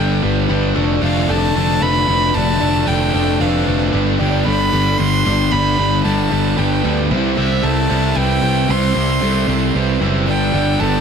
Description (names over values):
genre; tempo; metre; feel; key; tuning
rock; 114 BPM; 3/4; straight; G mixolydian; A4 = 442 Hz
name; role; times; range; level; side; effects
rich violin; melody; 0.0-11.0 s; E5 to C6; -21 LUFS; equal; digital delay
vibraphone with medium mallets; arpeggios; 0.0-11.0 s; B3 to D5; -26 LUFS; right 6 dB; digital delay
crunchy overdriven guitar; riff; 0.0-11.0 s; G2 to D4; -20 LUFS; left 12 dB; none
crunchy overdriven guitar; riff; 0.0-11.0 s; C3 to A4; -21 LUFS; right 14 dB; none
fuzz picked electric bass; bass; 0.0-11.0 s; F1 to D2; -19 LUFS; equal; overdrive
pipe organ, trumpet; sustained chords; 10.3-11.0 s; B3 to G5; -28 LUFS; right 6 dB; none
room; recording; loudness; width
light reverb, small room ambience; none; -14 LUFS; side -6 dB against mid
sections
0.0-11.0 A section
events
none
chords
0.0 Gadd9; 0.8 Dm/F; 3.9 Gadd9; 7.1 C; 10.3 Gadd9